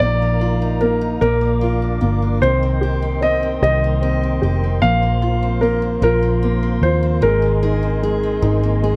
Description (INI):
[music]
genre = six-eight pop ballad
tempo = 50 BPM (dotted quarters)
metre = 6/8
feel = straight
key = unclear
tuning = A4 = 441 Hz
[part]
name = warm grand piano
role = melody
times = 0.0-9.0 s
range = Bb4 to F5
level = -22 LUFS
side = equal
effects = digital delay
[part]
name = warm upright piano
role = accompaniment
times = 0.0-9.0 s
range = Ab3 to G4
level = -25 LUFS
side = equal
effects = none
[part]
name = mellow tonewheel organ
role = sustained chords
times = 0.0-9.0 s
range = Eb4 to D6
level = -31 LUFS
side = equal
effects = chorus vibrato, stopped rotary speaker
[part]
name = picked steel-string acoustic guitar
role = arpeggios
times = 0.0-9.0 s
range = Eb3 to Ab4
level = -29 LUFS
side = equal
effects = none
[part]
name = vintage muted fingered electric bass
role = bass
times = 0.0-9.0 s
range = F1 to Eb2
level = -21 LUFS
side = equal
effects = none
[sound]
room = light reverb, small room ambience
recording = none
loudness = -18 LUFS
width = mono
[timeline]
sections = 0.0-9.0 A section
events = none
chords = 0.0 Bbsus4; 1.2 Bb; 2.4 Cm7; 4.8 Bbsus2; 7.2 Abadd9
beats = | 0.01 1.22 | 2.42 3.62 | 4.82 6.02 | 7.22 8.43